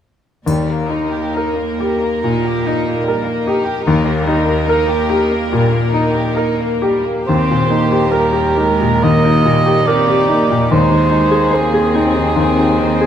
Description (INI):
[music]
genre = classical, romantic movement for piano and orchestra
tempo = 70 BPM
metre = 4/4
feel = uneven beats, rubato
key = Eb major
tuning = A4 = 439 Hz
[part]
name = clear grand piano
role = melody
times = 0.5-13.1 s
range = Eb2 to C5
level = -16 LUFS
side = left 2 dB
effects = none
[part]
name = warm studio violin section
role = melody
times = 0.5-13.1 s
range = G4 to C5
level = -25 LUFS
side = left 3 dB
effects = none
[part]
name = warm studio violin section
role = second line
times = 0.5-13.1 s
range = G3 to G4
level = -23 LUFS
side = left 2 dB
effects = none
[part]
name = rich studio viola section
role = accompaniment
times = 0.5-13.1 s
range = G3 to C4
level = -22 LUFS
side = right 2 dB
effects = none
[part]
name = warm studio cello section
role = bass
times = 0.5-13.1 s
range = Eb2 to Bb2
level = -22 LUFS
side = right 2 dB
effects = none
[part]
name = triangle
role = percussion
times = 0.5-2.2 s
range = none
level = -37 LUFS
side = left 1 dB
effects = none
[part]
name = warm cor anglais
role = second line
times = 7.3-13.1 s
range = Ab4 to Eb5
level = -17 LUFS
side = right 4 dB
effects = none
[sound]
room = moderate recital hall reverb, RT60 1.5 s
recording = none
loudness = -12 LUFS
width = side -9 dB against mid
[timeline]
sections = 0.5-7.3 A section; 7.3-13.1 B section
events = none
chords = 0.5 Eb; 10.7 Ab/Eb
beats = | 0.47 1.37 2.25 3.07 | 3.87 4.69 5.53 6.38 | 7.28 8.13 9.05 9.89 | 10.71 11.54 12.38